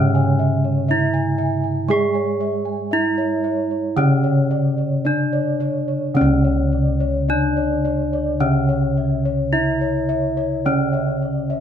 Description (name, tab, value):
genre	Javanese gamelan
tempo	53-62 BPM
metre	4/4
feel	straight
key	unclear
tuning	A4 = 440 Hz
part	gamelan-type bronze metallophone	melody	0.0-11.6 s	C#4 to G#4-30c	-22 LUFS	left 1 dB	none
part	gamelan-type bronze metallophone	accompaniment	0.0-11.6 s	C#3 to G#3-30c	-22 LUFS	right 1 dB	none
part	gamelan-type bossed gongs	arpeggios	0.0-11.6 s	C#5 to G#5-30c	-27 LUFS	left 4 dB	none
part	gamelan-type bronze metallophone	arpeggios	0.0-11.6 s	C#5 to G#5-30c	-29 LUFS	right 6 dB	none
part	gamelan-type bossed gongs	bass	0.0-11.6 s	C#2 to G#4-30c	-24 LUFS	equal	none
room	light reverb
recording	close, detailed microphones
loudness	-17 LUFS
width	side -9 dB against mid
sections	0.0-6.2 A section; 6.2-11.6 B section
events	none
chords	none